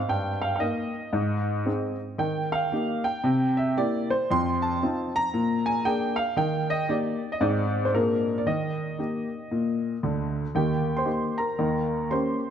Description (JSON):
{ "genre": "jazz, stride piano", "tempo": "115 BPM", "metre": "4/4", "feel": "swing 62% on 8ths", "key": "Eb major", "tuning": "A4 = 438 Hz", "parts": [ { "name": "clear baby grand piano", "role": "solo", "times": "0.0-12.5 s", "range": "D2 to C6", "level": "-24 LUFS", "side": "equal", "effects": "none" } ], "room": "moderate concert hall reverb, RT60 2.3 s", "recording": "close, detailed microphones", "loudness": "-24 LUFS", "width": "side -8 dB against mid", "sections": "0.0-10.5 A section; 10.5-12.5 B section", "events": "none", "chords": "0.1 Eb/G; 1.1 Ab; 2.2 Eb; 3.2 C7; 4.3 F7; 5.3 Bb7; 6.4 Eb; 7.4 Ab; 7.9 Bb7; 8.5 Eb; 11.6 Eb7" }